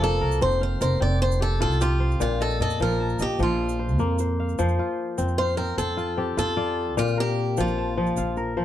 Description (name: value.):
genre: west african traditional, West African string and xylophone music.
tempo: 100 BPM (dotted quarters).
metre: 12/8.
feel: straight.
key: F mixolydian.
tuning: A4 = 437 Hz.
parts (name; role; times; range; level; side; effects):
picked swing-style acoustic guitar; melody; 0.0-8.3 s; F4 to D5; -26 LUFS; equal; none.
kora; arpeggios; 0.0-8.6 s; Bb2 to A5; -26 LUFS; left 3 dB; none.
upright bass; bass; 0.0-8.6 s; F1 to F2; -25 LUFS; right 1 dB; none.
tube shaker; percussion; 0.3-8.4 s; none; -42 LUFS; right 10 dB; none.
room: light reverb.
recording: dark, warm production.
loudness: -22 LUFS.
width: side -12 dB against mid.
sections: 0.0-4.6 A section; 4.6-8.6 B section.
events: none.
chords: 0.0 F; 2.2 Bb5; 4.6 F; 7.0 Bb.